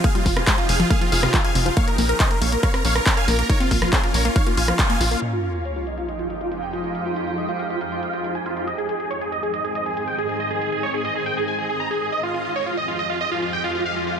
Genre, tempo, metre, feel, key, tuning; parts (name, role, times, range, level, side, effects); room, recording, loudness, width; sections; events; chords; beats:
uplifting trance; 139 BPM; 4/4; straight; F minor; A4 = 440 Hz
big supersaw lead; melody; 0.0-14.2 s; F4 to Bb5; -24 LUFS; right 1 dB; phaser, sidechain pumping, low-pass filter, tape echo
shimmering ambient pad; sustained chords; 0.0-14.2 s; F2 to Eb5; -28 LUFS; right 1 dB; chorus, built-in reverb, sidechain pumping
wide unison pluck; arpeggios; 0.0-5.2 s; C3 to Bb4; -26 LUFS; left 2 dB; sidechain pumping, tape echo
electronic kick drum; drums; 0.0-4.9 s; -20 LUFS; equal; overdrive
punchy analog drum machine; drums; 0.0-14.2 s; handclaps, hi-hat, rim click; -24 LUFS; equal; low-pass filter on hats, low-pass filter on snare, low-pass filter on room
tight sequencer bass; bass; 0.3-5.2 s; F1 to Bb1; -22 LUFS; equal; sidechain pumping
sub drop; sound effects; 5.2-6.9 s; -30 LUFS; equal
light reverb, digital ambience; -19 LUFS; side -7 dB against mid
0.0-5.2 A section; 5.2-14.2 B section
drop 0.0-5.2; band accent 4.8; impact 5.2-6.9; filter sweep on supersaw synth 5.2-14.2
0.0 Fm7; 1.8 Bbm; 5.2 Fm7; 8.7 Ab; 12.1 Fm7
| 0.04 0.47 0.91 1.34 | 1.77 2.20 2.63 3.06 | 3.50 3.93 4.36 4.79 | 5.22 5.65 6.08 6.52 | 6.95 7.38 7.81 8.24 | 8.67 9.11 9.54 9.97 | 10.40 10.83 11.26 11.70 | 12.13 12.56 12.99 13.42 | 13.85